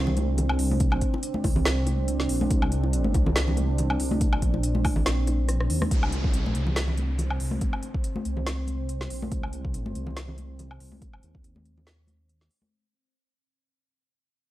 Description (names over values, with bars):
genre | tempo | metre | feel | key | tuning
deep dubstep | 141 BPM | 4/4 | swing 55% on 16ths, half-time | C minor | A4 = 445 Hz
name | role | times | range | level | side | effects
deep dark ambient pad | sustained chords | 0.0-12.8 s | C4 to C5 | -32 LUFS | right 2 dB | chorus, built-in reverb
dark detuned saw bass | bass | 0.0-12.5 s | Bb1 to Eb2 | -27 LUFS | equal | none
congas and bongos | percussion | 0.1-12.7 s | none | -32 LUFS | left 2 dB | none
deep house drum kit | drums | 0.2-12.6 s | hi-hat, rim click, snare drum, woodblock | -31 LUFS | equal | none
electronic kick drum | drums | 0.8-11.4 s | none | -26 LUFS | equal | none
downlifter | sound effects | 5.9-9.3 s | none | -39 LUFS | equal | none
room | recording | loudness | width
little or no reverb | dry, gritty hardware recording, vinyl crackle | -23 LUFS | side -15 dB against mid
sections
0.0-5.9 A section; 5.9-12.7 B section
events
drop 0.0-5.9; drum fill 5.5-5.9; fade-out 5.9-12.7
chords
0.0 Csus2; 5.9 Cm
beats
0.38 | 0.80 1.23 1.66 2.08 | 2.51 2.93 3.36 3.78 | 4.21 4.63 5.06 5.49 | 5.91 6.34 6.76 7.19 | 7.61 8.04 8.46 8.89 | 9.31 9.74 10.17 10.59 | 11.02 11.44 11.87 12.29